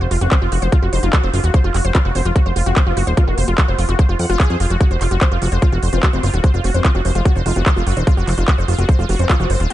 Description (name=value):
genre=psychedelic trance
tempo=147 BPM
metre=4/4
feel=straight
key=unclear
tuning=A4 = 440 Hz
part: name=wide unison pluck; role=riff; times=0.0-9.7 s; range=F4 to Gb5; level=-22 LUFS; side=right 1 dB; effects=auto-pan, sidechain pumping, digital delay
part: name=fat analog bass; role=bass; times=0.0-9.7 s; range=Eb1 to F2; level=-17 LUFS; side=equal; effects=none
part: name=techno drum kit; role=drums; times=0.1-9.7 s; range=handclaps, hi-hat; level=-24 LUFS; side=equal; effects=none
part: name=formant-sweep wobble bass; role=second line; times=0.2-3.5, 5.9-9.7 s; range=Bb3 to Eb4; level=-30 LUFS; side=left 4 dB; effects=ensemble chorus, sidechain pumping, high-pass filter, digital delay
part: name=electronic kick drum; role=drums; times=0.3-9.4 s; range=none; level=-13 LUFS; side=equal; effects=none
room=digital ambience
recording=nothing above 10.5 kHz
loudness=-14 LUFS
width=side -14 dB against mid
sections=0.0-9.7 A section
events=none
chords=0.0 F5